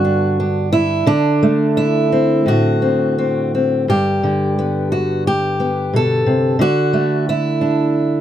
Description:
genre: folk, solo fingerstyle acoustic guitar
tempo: 88 BPM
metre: 4/4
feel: rubato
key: G major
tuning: A4 = 439 Hz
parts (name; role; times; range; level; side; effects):
- fingerpicked steel-string acoustic guitar; solo; 0.0-8.2 s; G2 to A4; -14 LUFS; equal; none
room: light reverb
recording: none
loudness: -14 LUFS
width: side -10 dB against mid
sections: 0.0-3.9 A section; 3.9-8.2 B section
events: none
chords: 0.0 Gmaj7; 1.1 D7; 3.9 Gadd9; 6.6 Dadd9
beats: 0.38 | 1.07 1.76 2.45 3.17 | 3.88 4.57 5.25 5.93 | 6.59 7.26 7.93

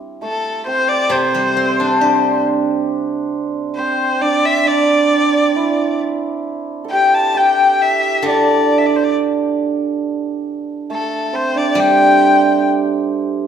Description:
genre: chinese traditional, Chinese chamber ensemble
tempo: 68 BPM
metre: 2/4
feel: rubato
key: G zhi mode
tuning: A4 = 440 Hz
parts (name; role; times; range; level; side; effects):
- hammered dulcimer; second line; 0.0-13.5 s; A3 to A4; -17 LUFS; right 5 dB; none
- steel-string zither; accompaniment; 0.0-3.8, 8.2-13.5 s; C3 to G4; -20 LUFS; left 3 dB; none
- bright erhu; melody; 0.2-12.7 s; A4 to A5; -16 LUFS; left 3 dB; none
room: wet recital hall reverb, RT60 1.5 s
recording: minimal, uncompressed stereo recording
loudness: -13 LUFS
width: side -8 dB against mid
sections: 0.0-13.5 A section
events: none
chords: none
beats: 0.21 | 1.10 1.98 | 2.86 3.74 | 4.63 5.53 | 6.44 7.34 | 8.24 9.12 | 10.00 10.88 | 11.76 12.66

